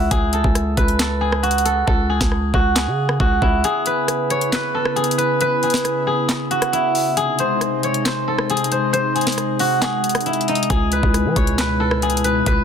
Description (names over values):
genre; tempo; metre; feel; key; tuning
hip hop, trap; 136 BPM; 4/4; half-time; C# minor; A4 = 440 Hz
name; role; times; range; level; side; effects
steel-string zither; melody; 0.0-12.6 s; D#4 to C#5; -19 LUFS; equal; low-pass filter
growling 808-style bass; bass; 0.0-3.6, 10.7-12.6 s; C#2 to E3; -21 LUFS; equal; none
trap drum kit; drums; 0.1-12.6 s; handclaps, hi-hat, kick drum, rim click, snare drum; -21 LUFS; equal; soft clipping on snare
airy breathy pad; sustained chords; 3.6-12.6 s; B2 to E4; -24 LUFS; equal; chorus
room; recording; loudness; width
little or no reverb; dense, heavily limited modern master; -16 LUFS; side -7 dB against mid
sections
0.0-12.6 A section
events
hi-hats muted 1.9-3.6; kick muted 3.6-10.7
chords
0.1 C#madd11; 3.6 C#m7; 7.2 G#; 10.7 E/C#